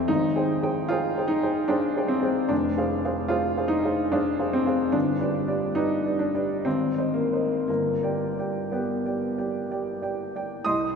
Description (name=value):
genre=classical, romantic character piece for solo piano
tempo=56-77 BPM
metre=3/4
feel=rubato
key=unclear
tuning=A4 = 439 Hz
part: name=warm upright piano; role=solo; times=0.0-11.0 s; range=F1 to Eb6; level=-23 LUFS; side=equal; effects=none
room=wet cathedral reverb, RT60 4.6 s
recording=recorded in a church or concert hall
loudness=-23 LUFS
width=side -6 dB against mid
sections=0.0-10.7 A section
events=none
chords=0.1 Abmaj7; 2.5 Dm7b5/F; 4.9 G; 6.7 Ab; 7.7 G